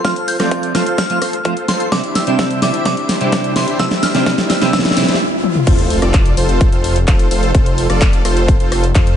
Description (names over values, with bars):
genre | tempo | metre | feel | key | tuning
EDM, festival progressive house | 128 BPM | 4/4 | straight | F major | A4 = 441 Hz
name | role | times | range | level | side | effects
glassy synth bell | melody | 0.0-5.2 s | C6 to G6 | -22 LUFS | left 1 dB | chorus, dub echo
clean electric guitar | accompaniment | 0.0-5.0 s | C3 to F4 | -20 LUFS | right 3 dB | analog chorus, sidechain pumping
dense compressed supersaw | riff | 0.0-9.2 s | D4 to G5 | -20 LUFS | equal | sidechain pumping, low-pass filter, dub echo
big-room dance drum kit | drums | 0.0-9.2 s | crash cymbal, handclaps, hi-hat, rim click, snare drum, toms | -19 LUFS | left 1 dB | none
electronic kick drum | drums | 0.0-9.0 s | none | -13 LUFS | equal | high-pass filter on kick
riser and sub drop | sound effects | 1.3-7.5 s | none | -26 LUFS | equal | none
wide detuned saw bass | bass | 5.7-9.2 s | F1 to F2 | -17 LUFS | equal | chorus, sidechain pumping
room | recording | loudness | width
light reverb | nothing above 10.6 kHz | -12 LUFS | side -9 dB against mid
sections
0.0-5.7 A section; 5.7-9.2 B section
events
build-up 0.0-5.7; drum fill 0.0-5.2, 5.4; filter sweep on supersaw synth 0.0-5.7; stop 5.2-5.7; drop 5.7-9.2; impact 5.7-7.5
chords
0.0 F; 1.9 Cadd9; 5.7 F